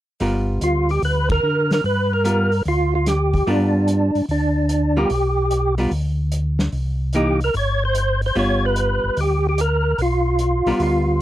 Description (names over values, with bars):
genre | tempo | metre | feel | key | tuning
soul jazz organ trio | 147 BPM | 4/4 | swing 67% on 8ths | G mixolydian | A4 = 442 Hz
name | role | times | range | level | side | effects
archtop guitar, miked and amplified | accompaniment | 0.2-11.2 s | E3 to A#4 | -22 LUFS | equal | none
mellow tonewheel organ | bass | 0.2-11.2 s | G1 to D3 | -21 LUFS | equal | chorus vibrato, slow rotary speaker
vintage drum kit | drums | 0.2-10.9 s | hi-hat, kick drum, ride cymbal, snare drum | -29 LUFS | equal | none
percussive tonewheel organ | melody | 0.6-11.2 s | D4 to C#5 | -20 LUFS | right 1 dB | slow rotary speaker, overdrive, chorus vibrato
room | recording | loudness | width
little or no reverb | none | -17 LUFS | side -13 dB against mid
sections
0.2-11.2 A section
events
band accent 1.2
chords
0.2 G7#9; 6.7 C7#9; 8.4 G7#9